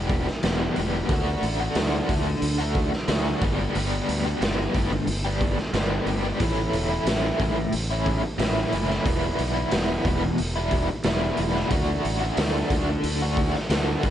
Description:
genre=psychedelic rock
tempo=90 BPM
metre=4/4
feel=straight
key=unclear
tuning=A4 = 440 Hz
part: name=biting overdriven guitar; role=riff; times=0.0-14.1 s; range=E2 to G4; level=-26 LUFS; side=equal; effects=tremolo
part: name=fuzz fingered electric bass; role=bass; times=0.0-14.1 s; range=E1 to D2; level=-28 LUFS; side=equal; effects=overdrive
part: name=raw garage drum kit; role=drums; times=0.1-14.1 s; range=hi-hat, kick drum, snare drum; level=-26 LUFS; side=equal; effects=none
room=small room ambience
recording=nothing above 10.3 kHz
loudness=-22 LUFS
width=side -11 dB against mid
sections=0.0-14.1 A section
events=none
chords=0.0 Em; 1.1 D; 3.4 G; 6.4 A; 9.1 Em; 11.7 D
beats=0.44 | 1.10 1.76 2.43 3.09 | 3.75 4.42 5.08 5.74 | 6.41 7.07 7.73 8.40 | 9.06 9.72 10.39 11.05 | 11.71 12.38 13.04 13.71

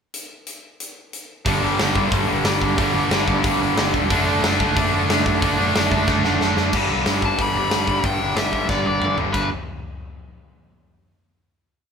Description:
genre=punk rock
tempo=183 BPM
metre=4/4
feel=straight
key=unclear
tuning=A4 = 435 Hz
part: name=big rock drum kit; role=drums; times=0.1-9.4 s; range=crash cymbal, hi-hat, kick drum, snare drum, toms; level=-23 LUFS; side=equal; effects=none
part: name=cranked stack guitar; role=riff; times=1.5-6.7 s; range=G2 to D4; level=-25 LUFS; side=right 2 dB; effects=overdrive
part: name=distorted electric guitar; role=riff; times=1.5-9.5 s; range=G2 to D4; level=-23 LUFS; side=left 6 dB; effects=distortion
part: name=distorted electric guitar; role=riff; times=1.5-9.5 s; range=G2 to D4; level=-24 LUFS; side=right 7 dB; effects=distortion
part: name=overdriven picked electric bass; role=bass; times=1.5-9.5 s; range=E1 to G2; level=-27 LUFS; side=equal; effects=none
part: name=nasal lead guitar with a parked wah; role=melody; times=7.3-9.5 s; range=B4 to B5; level=-24 LUFS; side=left 4 dB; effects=overdrive
room=light reverb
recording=band playing live in one room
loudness=-17 LUFS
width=side -6 dB against mid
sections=0.1-1.5 pickup bar; 1.5-6.7 riff; 6.7-9.3 outro; 9.3-10.7 final chord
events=drum fill 6.1-6.7, 8.7-9.3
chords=0.1 N.C.; 1.5 G5; 4.1 D/F#; 6.7 G; 9.3 G5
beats=| 0.14 0.47 0.80 1.13 | 1.46 1.79 2.12 2.45 | 2.78 3.11 3.44 3.77 | 4.11 4.43 4.76 5.09 | 5.42 5.75 6.08 6.40 | 6.73 7.06 7.38 7.71 | 8.04 8.36 8.69 9.01 | 9.34

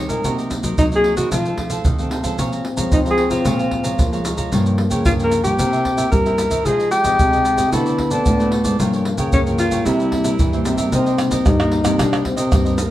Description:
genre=samba and choro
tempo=112 BPM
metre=4/4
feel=straight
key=unclear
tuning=A4 = 436 Hz
part: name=cavaquinho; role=accompaniment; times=0.0-12.9 s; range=Eb4 to Bb5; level=-29 LUFS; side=right 4 dB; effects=none
part: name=nylon-string guitar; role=accompaniment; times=0.0-12.9 s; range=F2 to G4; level=-26 LUFS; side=equal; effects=none
part: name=nylon-string guitar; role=bass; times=0.0-12.9 s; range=G2 to G3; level=-23 LUFS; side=equal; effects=none
part: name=breathy alto saxophone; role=melody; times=0.1-10.7 s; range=Db4 to Bb4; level=-19 LUFS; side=left 1 dB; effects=none
part: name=maracas, surdo, pandeiro and tamborim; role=percussion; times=0.1-12.9 s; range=none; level=-21 LUFS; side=right 1 dB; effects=none
part: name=breathy trombone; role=second line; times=2.4-12.9 s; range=G3 to Eb4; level=-23 LUFS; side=left 2 dB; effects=none
room=wet large studio reverb, RT60 0.9 s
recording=band playing live in one room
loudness=-15 LUFS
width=side -14 dB against mid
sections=0.0-10.9 A section; 10.9-12.9 B section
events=trombone solo 10.9-12.9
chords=0.2 Cm7b5; 1.3 F7; 2.4 Bbm7; 4.5 Gm7b5; 5.6 C7; 6.7 Fm9; 7.7 D7; 8.8 Gm7b5; 9.9 C7; 10.9 Cm7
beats=| 0.24 0.78 1.31 1.85 | 2.38 2.92 3.45 3.99 | 4.52 5.06 5.59 6.12 | 6.66 7.19 7.72 8.26 | 8.79 9.32 9.86 10.39 | 10.92 11.46 11.99 12.52

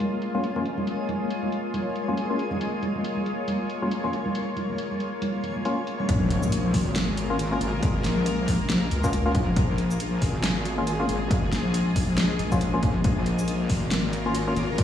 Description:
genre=deep dubstep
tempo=138 BPM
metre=4/4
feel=swing 58% on 16ths, half-time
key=Bb minor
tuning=A4 = 443 Hz
part: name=bowed-like drone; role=sustained chords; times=0.0-14.8 s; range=Bb3 to Db5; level=-30 LUFS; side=left 2 dB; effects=built-in reverb
part: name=deep house drum kit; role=drums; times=0.0-14.8 s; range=hi-hat, shaker, snare drum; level=-31 LUFS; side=equal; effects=overdrive, low-pass filter on hats, low-pass filter on perc, low-pass filter on snare
part: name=congas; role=percussion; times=0.0-6.1 s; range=none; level=-30 LUFS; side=right 1 dB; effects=dub echo
part: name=backwards swelling texture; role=texture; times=0.0-14.8 s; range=Ab3 to Db5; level=-33 LUFS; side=left 1 dB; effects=built-in reverb
part: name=percussive organ stab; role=stabs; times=0.3-14.5 s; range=Bb3 to F4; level=-31 LUFS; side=left 2 dB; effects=chorus, dub echo
part: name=wobble bass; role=bass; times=6.1-14.8 s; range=Ab1 to Db2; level=-26 LUFS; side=left 1 dB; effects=chorus, tube saturation
part: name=electronic kick drum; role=drums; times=6.1-14.8 s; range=none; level=-26 LUFS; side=equal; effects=overdrive
part: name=impact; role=sound effects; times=6.1-7.8 s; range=none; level=-29 LUFS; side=left 1 dB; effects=none
room=moderate echo chamber reverb, RT60 1.6 s, digital ambience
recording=played on a big sound system in a bare room, stone room reverb, small room reverb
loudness=-23 LUFS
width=side -10 dB against mid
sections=0.0-6.1 A section; 6.1-14.8 B section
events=drop 6.1-14.8; impact 6.1-7.8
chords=0.0 Bbm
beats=0.00 0.44 | 0.87 1.31 1.74 2.17 | 2.61 3.04 3.48 3.91 | 4.35 4.78 5.22 5.65 | 6.09 6.52 6.96 7.39 | 7.83 8.26 8.70 9.13 | 9.57 10.00 10.44 10.87 | 11.31 11.74 12.18 12.61 | 13.04 13.48 13.91 14.35 | 14.78

